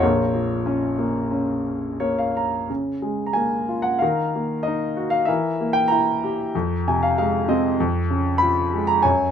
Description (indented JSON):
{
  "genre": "classical, lyrical solo piano",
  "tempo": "85-99 BPM",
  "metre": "4/4",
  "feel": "rubato",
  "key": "Db major",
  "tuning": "A4 = 440 Hz",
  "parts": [
    { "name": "warm grand piano", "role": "solo", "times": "0.0-9.3 s", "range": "Bb1 to Cb6", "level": "-19 LUFS", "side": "equal", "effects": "none" }
  ],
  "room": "light reverb",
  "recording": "minimal, uncompressed stereo recording",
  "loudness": "-19 LUFS",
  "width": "side -8 dB against mid",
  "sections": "0.0-2.7 A section; 2.7-9.3 B section",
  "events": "grand piano fill 1.7-2.7, 6.5-7.8",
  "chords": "0.0 Bbm; 2.7 Db6; 4.0 Ebmadd9; 5.3 Edim; 6.5 Fm; 7.8 Db/F"
}